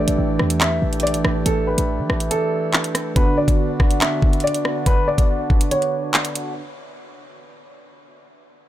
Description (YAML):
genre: hip hop, drill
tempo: 141 BPM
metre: 4/4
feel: half-time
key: B minor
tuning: A4 = 439 Hz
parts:
  - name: dark baby grand piano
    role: melody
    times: 0.0-6.5 s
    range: A4 to E5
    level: -24 LUFS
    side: left 1 dB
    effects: low-pass filter, digital delay
  - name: warbly lo-fi synth keys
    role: accompaniment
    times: 0.0-6.6 s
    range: D3 to G4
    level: -25 LUFS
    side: right 3 dB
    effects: chorus, low-pass filter
  - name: hand-pumped harmonium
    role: sustained chords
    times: 0.0-6.5 s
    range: D3 to G4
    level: -29 LUFS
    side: left 1 dB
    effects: stereo widening, low-pass filter
  - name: short 808-style bass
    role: bass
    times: 0.0-2.3 s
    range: A1 to E3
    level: -22 LUFS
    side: equal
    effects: none
  - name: drill drum kit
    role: drums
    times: 0.1-6.5 s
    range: handclaps, hi-hat, kick drum, rim click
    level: -18 LUFS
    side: equal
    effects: none
room: little or no reverb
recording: none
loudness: -17 LUFS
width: side -13 dB against mid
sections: 0.0-3.2 A section; 3.2-6.6 B section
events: kick muted 2.3-3.2; filter sweep 3.2-6.6; break 5.7-6.6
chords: 0.0 A7sus4; 3.2 Bmadd9